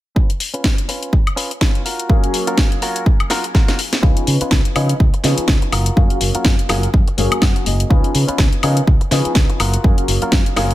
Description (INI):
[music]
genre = filtered disco house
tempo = 124 BPM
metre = 4/4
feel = swing 57% on 16ths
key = F# major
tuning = A4 = 440 Hz
[part]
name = direct-recorded clean electric guitar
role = riff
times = 0.2-10.7 s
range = C#4 to F#5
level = -26 LUFS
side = equal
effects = sidechain pumping, low-pass filter
[part]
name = electronic kick drum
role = drums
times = 0.2-10.4 s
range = none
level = -14 LUFS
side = equal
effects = none
[part]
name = house drum kit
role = drums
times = 0.3-10.7 s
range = hi-hat, snare drum, woodblock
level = -20 LUFS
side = left 1 dB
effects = none
[part]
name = bright grand piano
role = accompaniment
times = 2.1-10.7 s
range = E#3 to E#5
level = -22 LUFS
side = left 1 dB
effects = phaser, vintage 12-bit sampler grit, sidechain pumping, low-pass filter
[part]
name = modern bright fingered electric bass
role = bass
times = 4.0-10.7 s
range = F#1 to C#3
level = -18 LUFS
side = equal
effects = sidechain pumping, low-pass filter
[part]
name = tube shaker and congas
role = percussion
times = 4.0-10.7 s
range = none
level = -29 LUFS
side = left 6 dB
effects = none
[sound]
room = digital ambience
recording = none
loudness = -14 LUFS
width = side -15 dB against mid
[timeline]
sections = 0.2-4.0 A section; 4.0-10.7 B section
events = filter sweep 0.2-4.0, 4.0-10.7; drum fill 3.6-4.0; clean electric guitar fill 7.2-7.9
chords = 0.2 C#7; 1.9 F#maj7; 4.0 C#7; 5.7 F#maj7; 7.9 C#7; 9.6 F#maj7